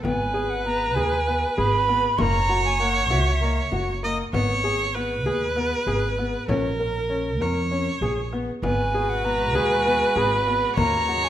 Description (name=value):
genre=contemporary instrumental, chamber music in an uneven meter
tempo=196 BPM (eighths)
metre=7/8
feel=straight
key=unclear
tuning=A4 = 436 Hz
part: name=bright reedy wooden flute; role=melody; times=0.0-3.7, 8.6-11.3 s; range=Eb5 to Db6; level=-24 LUFS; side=right 2 dB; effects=none
part: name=clear viola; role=second line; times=0.0-11.3 s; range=Bb4 to Eb5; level=-25 LUFS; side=right 2 dB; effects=none
part: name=warm grand piano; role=arpeggios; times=0.0-11.2 s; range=Bb3 to Bb4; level=-28 LUFS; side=left 3 dB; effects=none
part: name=upright bass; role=bass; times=0.0-11.3 s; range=Gb1 to F2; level=-27 LUFS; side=right 1 dB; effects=none
part: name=frame drum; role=percussion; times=0.0-11.1 s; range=none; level=-33 LUFS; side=left 2 dB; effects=none
part: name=rich chamber string section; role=sustained chords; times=8.6-11.3 s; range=Cb3 to Gb4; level=-32 LUFS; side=left 3 dB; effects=none
room=wet recital hall reverb, RT60 1.7 s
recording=minimal, uncompressed stereo recording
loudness=-20 LUFS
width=side -11 dB against mid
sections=0.0-11.3 A section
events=none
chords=0.0 Abm; 2.2 Gb7; 4.3 Abm; 6.5 Bbm; 8.6 Abm7; 10.8 Ebm7